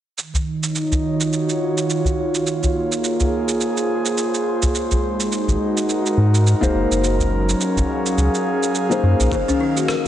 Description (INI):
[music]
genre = organic downtempo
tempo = 105 BPM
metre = 4/4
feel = swing 58% on 16ths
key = unclear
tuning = A4 = 441 Hz
[part]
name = airy breathy pad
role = sustained chords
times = 0.2-10.1 s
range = Eb3 to F5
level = -20 LUFS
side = right 1 dB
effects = chorus, sidechain pumping
[part]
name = electronic shaker and rim click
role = drums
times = 0.2-10.0 s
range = none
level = -26 LUFS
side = right 4 dB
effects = overdrive
[part]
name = udu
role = percussion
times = 0.3-10.1 s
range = none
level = -23 LUFS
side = equal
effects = none
[part]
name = warm sub bass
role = bass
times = 5.5-10.1 s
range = Eb1 to Ab2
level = -18 LUFS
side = equal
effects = sidechain pumping
[part]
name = felt-muted upright piano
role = accompaniment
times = 6.6-9.3 s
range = Bb3 to C5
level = -22 LUFS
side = left 3 dB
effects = sidechain pumping, digital delay
[part]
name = buzzing kalimba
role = arpeggios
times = 9.3-10.1 s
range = Bb3 to Bb4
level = -20 LUFS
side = left 4 dB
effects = digital delay
[part]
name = electronic kick drum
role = drums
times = 9.3-9.4 s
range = none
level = -25 LUFS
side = equal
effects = overdrive
[sound]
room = moderate echo chamber reverb, RT60 1.9 s, small room reverb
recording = heavily compressed radio sound, nothing above 10.5 kHz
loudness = -17 LUFS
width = side -11 dB against mid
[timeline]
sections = 0.2-9.3 A section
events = filter sweep on analog synth pad 0.2-9.3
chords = 0.2 Ebm7; 2.5 Bbm9; 4.7 Ab7; 7.0 Gbmaj7; 9.3 Ebm7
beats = | 0.17 0.74 1.32 1.89 | 2.46 3.03 3.60 4.17 | 4.75 5.32 5.89 6.46 | 7.03 7.60 8.17 8.74 | 9.32 9.89